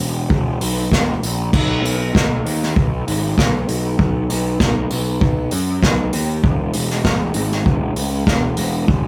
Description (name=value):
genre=indie rock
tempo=98 BPM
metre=4/4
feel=straight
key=E lydian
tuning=A4 = 441 Hz
part: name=fuzz picked electric bass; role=bass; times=0.0-9.1 s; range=E1 to F#2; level=-22 LUFS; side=equal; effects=overdrive
part: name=unplugged drum kit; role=drums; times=0.3-9.0 s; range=crash cymbal, hi-hat, kick drum, snare drum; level=-20 LUFS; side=equal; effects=none
room=light reverb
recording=rough rehearsal-room recording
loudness=-18 LUFS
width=mono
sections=0.0-9.1 A section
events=none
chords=none